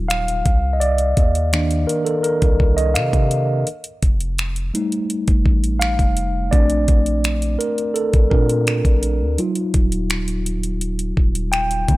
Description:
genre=contemporary R&B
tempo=84 BPM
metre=4/4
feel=straight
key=unclear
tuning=A4 = 444 Hz
part: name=mellow tine electric piano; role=accompaniment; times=0.0-12.0 s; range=D3 to G5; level=-20 LUFS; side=equal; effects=medium stereo tremolo
part: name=long sustained 808-style bass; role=bass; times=0.0-12.0 s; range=Eb1 to C3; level=-21 LUFS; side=equal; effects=none
part: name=smooth R&B drum kit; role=drums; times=0.1-12.0 s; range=finger snaps, hi-hat, kick drum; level=-18 LUFS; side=equal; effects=none
room=little or no reverb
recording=dry, gritty hardware recording, transformer saturation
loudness=-16 LUFS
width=side -18 dB against mid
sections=0.0-12.0 A section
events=tine electric piano solo 0.0-12.0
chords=0.5 Cm7; 3.7 F9; 6.5 Bbmaj9; 9.4 Ebmadd9

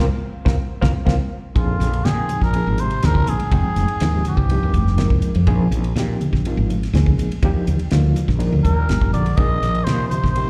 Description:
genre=electric jazz fusion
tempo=123 BPM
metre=4/4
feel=straight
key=Bb mixolydian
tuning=A4 = 441 Hz
part: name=overdriven reed electric piano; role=accompaniment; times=0.0-10.5 s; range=F3 to G5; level=-28 LUFS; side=equal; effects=fast tremolo, slapback echo
part: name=woody fretless electric bass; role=bass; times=0.0-10.4 s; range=F1 to Bb2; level=-21 LUFS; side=equal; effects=none
part: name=damped 70s drum kit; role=drums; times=0.5-10.5 s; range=hi-hat, kick drum, ride cymbal, snare drum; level=-24 LUFS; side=equal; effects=none
part: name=congas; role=percussion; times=0.5-10.2 s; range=none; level=-32 LUFS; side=equal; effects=none
part: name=trumpet with cup mute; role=melody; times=1.6-5.2, 8.6-10.5 s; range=F4 to Eb5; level=-27 LUFS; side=equal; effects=slapback echo
part: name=mellow bass clarinet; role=second line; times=1.6-5.2, 8.7-10.5 s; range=F2 to Eb3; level=-30 LUFS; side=equal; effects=none
room=light reverb, small room ambience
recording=live gig heard through the venue's PA, club reverb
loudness=-19 LUFS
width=mono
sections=0.0-1.6 A section; 1.6-10.5 B section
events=band accent 0.0-1.6; drum fill 1.3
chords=0.0 C7sus4; 1.6 Bb9sus4; 3.5 Fm9; 5.5 Bb9sus4; 7.4 Ebmaj9; 9.4 Bb9sus4

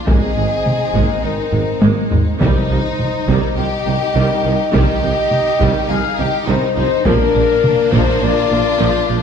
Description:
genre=cinematic, epic orchestral film score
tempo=103 BPM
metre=4/4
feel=straight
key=C minor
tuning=A4 = 440 Hz
part: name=warm symphonic violin section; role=melody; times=0.0-9.2 s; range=D4 to Ab4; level=-23 LUFS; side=left 6 dB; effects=none
part: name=rich symphonic violin section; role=second line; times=0.0-9.2 s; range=Bb3 to Eb4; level=-25 LUFS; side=left 4 dB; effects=none
part: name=rich symphonic viola section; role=accompaniment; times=0.1-9.2 s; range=Eb3 to Bb3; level=-25 LUFS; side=right 1 dB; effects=none
part: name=dark French horn section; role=sustained chords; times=0.1-9.2 s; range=Bb4 to F5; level=-18 LUFS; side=left 3 dB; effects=none
part: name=mellow tuba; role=bass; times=0.1-9.2 s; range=Ab1 to C2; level=-23 LUFS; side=right 5 dB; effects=none
part: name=rich symphonic cello section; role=bass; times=0.1-9.2 s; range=Ab2 to C3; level=-23 LUFS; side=right 4 dB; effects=none
part: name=rich symphonic double bass section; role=bass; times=0.1-9.2 s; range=Ab1 to C2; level=-24 LUFS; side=right 4 dB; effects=none
part: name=taiko ensemble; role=drums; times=0.1-8.5 s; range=none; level=-18 LUFS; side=equal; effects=none
part: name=timpani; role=percussion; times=2.4-3.2 s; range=C3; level=-23 LUFS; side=equal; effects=none
room=moderate concert hall reverb, RT60 2.0 s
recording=dark, warm production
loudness=-13 LUFS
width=side -7 dB against mid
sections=0.0-9.2 A section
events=drum fill 1.5-2.4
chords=0.1 Abadd9; 2.4 Cm; 7.1 Bb

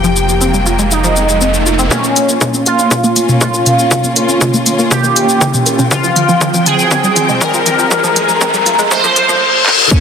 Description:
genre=melodic techno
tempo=120 BPM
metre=4/4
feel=straight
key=Bb dorian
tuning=A4 = 440 Hz
part: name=resonant sweep polysynth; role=melody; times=0.0-10.0 s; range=Db4 to C5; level=-14 LUFS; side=equal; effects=chorus, sidechain pumping, ping-pong delay
part: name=dark studio string section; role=sustained chords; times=0.0-10.0 s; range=F3 to G5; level=-18 LUFS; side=equal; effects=sidechain pumping
part: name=analog pluck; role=arpeggios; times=0.0-10.0 s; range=C3 to Bb4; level=-19 LUFS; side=equal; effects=chorus, sidechain pumping, ping-pong delay
part: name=dark detuned saw bass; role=bass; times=0.0-9.4 s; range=F1 to C2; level=-22 LUFS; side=equal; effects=none
part: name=techno drum kit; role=drums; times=0.0-10.0 s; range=handclaps, hi-hat, shaker, toms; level=-15 LUFS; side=left 1 dB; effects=overdrive
part: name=riser and reverse cymbal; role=sound effects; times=0.0-9.9 s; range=none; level=-18 LUFS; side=equal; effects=none
part: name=electronic kick drum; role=drums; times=1.9-10.0 s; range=none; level=-14 LUFS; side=equal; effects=overdrive, high-pass filter on kick
room=wet lush hall reverb, RT60 1.8 s, digital ambience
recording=dense, heavily limited modern master, high-pass filter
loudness=-9 LUFS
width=side -7 dB against mid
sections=0.0-1.9 A section; 1.9-9.9 B section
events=riser 0.0-1.9, 1.9-9.4; filter sweep on synth arpeggio sound 0.0-1.9, 1.9-9.9; filter sweep on analog polysynth 0.0-1.9; build-up 1.9-9.9; drum fill 1.9-9.4, 9.7; filter sweep 1.9-9.9; reverse cymbal 8.9-9.9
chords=0.0 F5; 1.9 Bbm; 5.9 Fm

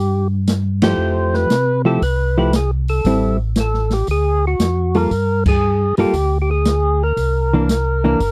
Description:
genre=soul jazz organ trio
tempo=116 BPM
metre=4/4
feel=swing 68% on 8ths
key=F major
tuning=A4 = 436 Hz
part: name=percussive tonewheel organ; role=melody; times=0.0-8.3 s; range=Gb4 to C5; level=-22 LUFS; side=equal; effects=slow rotary speaker, overdrive
part: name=mellow tonewheel organ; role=bass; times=0.0-8.3 s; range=G1 to C3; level=-21 LUFS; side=equal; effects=chorus vibrato, slow rotary speaker
part: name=open jazz drum kit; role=drums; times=0.5-8.3 s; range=crash cymbal, hi-hat, kick drum, ride cymbal, snare drum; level=-23 LUFS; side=equal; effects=none
part: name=hollow-body jazz guitar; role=accompaniment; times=0.8-8.2 s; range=E3 to A4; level=-19 LUFS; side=equal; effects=none
room=little or no reverb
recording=dry, close 1970s-style studio recording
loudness=-17 LUFS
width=mono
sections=0.0-8.3 A section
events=band accent 0.7, 5.4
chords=0.0 C; 1.0 Fmaj9; 3.0 Am7; 4.1 Gm7; 7.2 C9

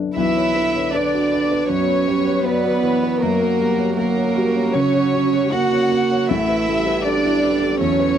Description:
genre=neoclassical piano and strings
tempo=79 BPM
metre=4/4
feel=rubato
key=B minor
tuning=A4 = 440 Hz
part: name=warm baby grand piano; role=accompaniment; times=0.0-8.2 s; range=A1 to D5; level=-23 LUFS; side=left 6 dB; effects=none
part: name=warm chamber violin section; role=melody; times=0.2-8.2 s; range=A#4 to F#5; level=-22 LUFS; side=left 3 dB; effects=none
part: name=clear cello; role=second line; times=0.2-8.2 s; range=A#3 to F#4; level=-20 LUFS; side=right 5 dB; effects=none
part: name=dark viola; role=accompaniment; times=0.2-8.2 s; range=D3 to A#3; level=-26 LUFS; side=right 3 dB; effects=none
part: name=ethereal airy pad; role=sustained chords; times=1.5-8.2 s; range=B3 to A4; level=-30 LUFS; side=right 1 dB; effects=none
part: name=concert harp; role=arpeggios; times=0.2-8.2 s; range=F#4 to B5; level=-30 LUFS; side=right 5 dB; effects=none
room=little or no reverb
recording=dry, close 1970s-style studio recording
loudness=-16 LUFS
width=side -9 dB against mid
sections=0.2-8.2 A section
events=none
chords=0.2 Bmadd9; 3.2 F#; 6.3 Asus2

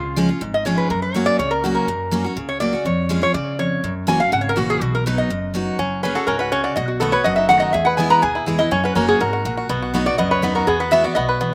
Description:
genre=bluegrass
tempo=246 BPM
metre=4/4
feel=straight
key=B major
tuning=A4 = 440 Hz
part: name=lap resonator guitar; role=melody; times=0.0-11.2 s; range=E#4 to A#5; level=-22 LUFS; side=equal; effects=slapback echo
part: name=picked steel-string acoustic guitar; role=accompaniment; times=0.0-11.5 s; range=E2 to G#4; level=-24 LUFS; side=equal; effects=none
part: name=upright bass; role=bass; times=0.0-11.5 s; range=F#1 to C#3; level=-31 LUFS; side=equal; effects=none
part: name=bluegrass banjo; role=melody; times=5.8-11.5 s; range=B3 to B4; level=-24 LUFS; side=equal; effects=none
room=little or no reverb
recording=recorded outdoors, with no room sound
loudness=-19 LUFS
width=mono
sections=0.0-11.5 A section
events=none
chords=0.0 C#; 0.9 F#; 2.9 C#/E#; 3.8 F#7; 4.8 B; 5.8 F#sus2; 6.8 B7; 7.7 E; 8.7 F#; 9.7 B; 10.7 Eadd9

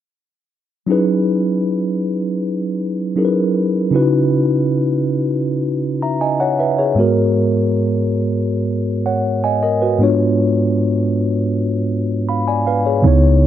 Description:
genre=contemporary R&B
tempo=79 BPM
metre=4/4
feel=straight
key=C# dorian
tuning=A4 = 440 Hz
part: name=mellow tine electric piano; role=accompaniment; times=0.9-13.5 s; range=G#2 to B5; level=-15 LUFS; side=equal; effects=medium stereo tremolo
part: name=clean 808-style bass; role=bass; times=13.0-13.5 s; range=C#2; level=-12 LUFS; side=equal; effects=none
room=moderate plate reverb, RT60 2.9 s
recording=dark, warm production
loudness=-15 LUFS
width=side -11 dB against mid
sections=0.9-13.0 A section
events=none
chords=0.9 F#13sus4; 3.9 C#m11; 7.0 G#m7; 10.0 C#7b9/G#

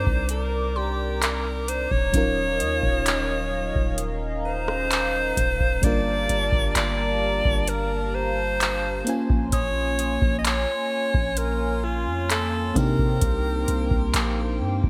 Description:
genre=contemporary R&B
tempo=65 BPM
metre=4/4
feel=straight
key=unclear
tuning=A4 = 438 Hz
part: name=bright alto saxophone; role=melody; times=0.0-14.8 s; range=F4 to Eb5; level=-28 LUFS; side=equal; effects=digital delay
part: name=FM electric piano with soft pad layer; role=accompaniment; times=0.0-14.9 s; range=Gb3 to Ab5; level=-33 LUFS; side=equal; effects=chorus
part: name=hollow soft pad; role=sustained chords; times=0.0-14.9 s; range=Bb3 to Eb6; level=-35 LUFS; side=equal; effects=chorus, sidechain pumping
part: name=long sustained 808-style bass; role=bass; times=0.0-14.9 s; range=Eb1 to C3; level=-30 LUFS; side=equal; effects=none
part: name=booming analog drum machine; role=drums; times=0.1-14.9 s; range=handclaps, hi-hat, kick drum, rim click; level=-27 LUFS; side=equal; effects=gated reverb
part: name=mallet-like synth pluck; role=texture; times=0.8-2.6, 9.5-13.2 s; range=C6 to Eb6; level=-40 LUFS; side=equal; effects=chorus, digital delay
room=light reverb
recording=bright 1980s-style digital production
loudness=-24 LUFS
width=mono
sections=0.0-14.9 A section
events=none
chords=0.0 Cm9; 2.1 Ebm9; 5.8 Gm9; 9.1 Bbm9; 12.8 Cm9

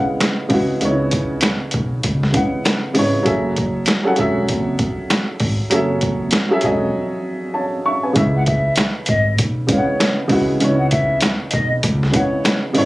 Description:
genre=hip hop, boom-bap hip-hop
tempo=98 BPM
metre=4/4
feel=swing 60% on 16ths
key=C# minor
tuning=A4 = 442 Hz
part: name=dark upright piano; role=accompaniment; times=0.0-12.9 s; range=C#3 to C#6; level=-19 LUFS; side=right 1 dB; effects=high-pass filter, low-pass filter
part: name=boom bap sampler-style drum kit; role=drums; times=0.2-12.9 s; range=hi-hat, kick drum, snare drum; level=-20 LUFS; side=equal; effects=none
part: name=finger snaps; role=percussion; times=0.2-6.5 s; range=none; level=-31 LUFS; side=left 2 dB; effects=none
part: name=upright bass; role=bass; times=0.5-12.9 s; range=E1 to C#2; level=-21 LUFS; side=equal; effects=none
part: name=mellow hollow silver concert flute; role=melody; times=8.4-12.6 s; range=C#5 to F#5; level=-21 LUFS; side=left 1 dB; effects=high-pass filter, low-pass filter, slapback echo
room=light reverb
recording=recorded on a phone in the room, club reverb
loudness=-15 LUFS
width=side -19 dB against mid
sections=0.0-8.2 A section; 8.2-12.9 B section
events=break 6.9-8.2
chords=0.0 C#m7; 3.3 F#m9; 8.2 C#m7

